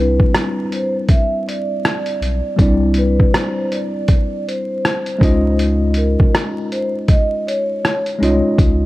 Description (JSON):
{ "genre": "lo-fi hip hop", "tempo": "80 BPM", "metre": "4/4", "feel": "swing 64% on 16ths", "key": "unclear", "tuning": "A4 = 440 Hz", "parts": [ { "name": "vibraphone with soft mallets", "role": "melody", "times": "0.0-8.6 s", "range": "Bb4 to E5", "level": "-22 LUFS", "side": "equal", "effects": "low-pass filter, tape echo" }, { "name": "mellow tine electric piano", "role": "accompaniment", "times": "0.0-8.9 s", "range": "G3 to Eb5", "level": "-20 LUFS", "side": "left 1 dB", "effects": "medium stereo tremolo, low-pass filter" }, { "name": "warm sub bass", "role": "bass", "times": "0.0-8.9 s", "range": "B1 to Db2", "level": "-18 LUFS", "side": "equal", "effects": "none" }, { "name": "lo-fi sampler-style drum kit", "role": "drums", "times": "0.2-8.8 s", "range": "hi-hat, kick drum, rim click", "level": "-16 LUFS", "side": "equal", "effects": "none" } ], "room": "light reverb, digital ambience", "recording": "vinyl crackle", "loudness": "-14 LUFS", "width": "side -17 dB against mid", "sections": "0.0-8.9 A section", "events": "none", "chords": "0.0 Cmaj9; 5.2 Dbadd9", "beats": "0.34 1.08 1.83 | 2.58 3.33 4.08 4.83 | 5.58 6.33 7.08 7.83 | 8.59" }